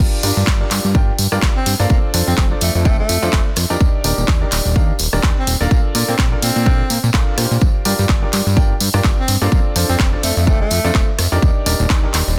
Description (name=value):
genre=piano house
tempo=126 BPM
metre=4/4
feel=swing 56% on 16ths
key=G minor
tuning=A4 = 440 Hz
part: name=clear upright piano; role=riff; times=0.0-12.4 s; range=D4 to G5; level=-26 LUFS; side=equal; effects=sidechain pumping, digital delay
part: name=fat analog bass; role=bass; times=0.0-12.4 s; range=Eb1 to Bb2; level=-21 LUFS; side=equal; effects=sidechain pumping
part: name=electronic kick drum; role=drums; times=0.0-12.0 s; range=none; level=-18 LUFS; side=equal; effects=none
part: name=punchy analog drum machine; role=drums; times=0.2-12.2 s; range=handclaps, hi-hat, rim click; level=-23 LUFS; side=equal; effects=none
part: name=tambourine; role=percussion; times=0.2-12.4 s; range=none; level=-31 LUFS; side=equal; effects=none
part: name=warm tenor saxophone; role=melody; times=1.6-11.1 s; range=A3 to C4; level=-26 LUFS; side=equal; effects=digital delay
room=small room ambience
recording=dense, heavily limited modern master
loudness=-16 LUFS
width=mono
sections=0.0-12.4 A section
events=none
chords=0.0 Gm7; 1.9 Dm7/F; 3.8 Ebmaj7; 5.7 Bbmaj7; 7.6 Gm7; 9.5 Dm7/F; 11.4 Ebmaj7